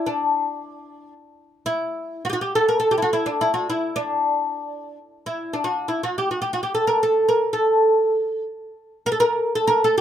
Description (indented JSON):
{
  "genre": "Turkish makam ensemble",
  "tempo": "free time",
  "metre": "none",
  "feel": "none",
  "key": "A makam hicaz",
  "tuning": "A4 = 440 Hz",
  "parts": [
    { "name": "oud", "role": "solo", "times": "0.0-10.0 s", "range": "D4 to Bb4", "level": "-19 LUFS", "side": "equal", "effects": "none" }
  ],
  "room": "light reverb",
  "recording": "minimal, uncompressed stereo recording",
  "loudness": "-19 LUFS",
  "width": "side -10 dB against mid",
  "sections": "0.0-10.0 A section",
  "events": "none",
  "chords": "none"
}